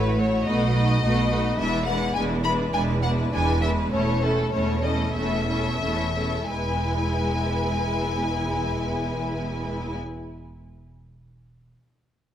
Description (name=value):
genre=quick classical-period movement for string orchestra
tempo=86-107 BPM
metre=4/4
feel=straight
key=E major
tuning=A4 = 435 Hz
part: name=clear studio violin section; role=melody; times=0.0-10.0 s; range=A4 to B5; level=-28 LUFS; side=left 3 dB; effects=none
part: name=clear symphonic violin section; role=second line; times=0.0-10.0 s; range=E4 to C#5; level=-31 LUFS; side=left 2 dB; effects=none
part: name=rich symphonic viola section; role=accompaniment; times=0.0-10.0 s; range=G#3 to E4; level=-29 LUFS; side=equal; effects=none
part: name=clear symphonic double bass section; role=bass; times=0.0-10.0 s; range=E1 to B1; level=-29 LUFS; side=right 1 dB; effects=none
part: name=rich studio cello section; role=bass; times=0.0-10.0 s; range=E2 to B2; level=-28 LUFS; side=right 2 dB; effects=none
room=moderate scoring stage reverb, RT60 2.0 s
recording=none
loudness=-22 LUFS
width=side -10 dB against mid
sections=0.0-6.5 A section; 6.5-9.2 B section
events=slowing down 0.5-6.5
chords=0.5 B7; 1.6 E7; 3.9 A/E; 6.5 E